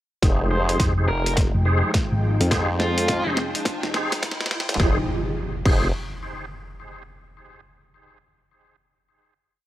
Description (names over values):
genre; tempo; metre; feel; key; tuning
glitch hop; 105 BPM; 4/4; swing 62% on 16ths; F minor; A4 = 440 Hz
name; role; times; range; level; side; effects
warm analog pad; sustained chords; 0.2-5.1 s; F3 to G5; -32 LUFS; equal; chorus, vintage 12-bit sampler grit, sidechain pumping
tonewheel organ; stabs; 0.2-5.9 s; Eb4 to C5; -29 LUFS; equal; chorus vibrato, fast rotary speaker, vintage 12-bit sampler grit, sidechain pumping, low-pass filter, tape echo
formant-sweep wobble bass; bass; 0.2-5.9 s; F1 to F2; -22 LUFS; equal; chorus, tube saturation
boom bap sampler-style drum kit; drums; 0.2-5.8 s; crash cymbal, hi-hat, snare drum; -27 LUFS; equal; small room ambience
electronic kick drum; drums; 0.2-5.8 s; none; -22 LUFS; equal; small room ambience
riser and impact; sound effects; 1.8-7.1 s; none; -31 LUFS; right 1 dB; none
high-gain lead guitar; melody; 0.5-3.4 s; F4 to C5; -30 LUFS; equal; distortion, vintage 12-bit sampler grit, low-pass filter, tape echo
hollow-body short-scale fingered electric bass; bass; 0.8-4.1 s; F1 to Ab1; -22 LUFS; equal; none
room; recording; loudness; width
little or no reverb; dry, gritty hardware recording, high-pass filter; -19 LUFS; side -14 dB against mid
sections
0.2-4.8 build; 4.8-7.1 final chord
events
build-up 0.2-4.8; drum fill 0.2-4.8; filter sweep on tonewheel organ 0.2-4.8; filter sweep 0.2-4.8; riser 1.8-4.8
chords
0.2 Fm9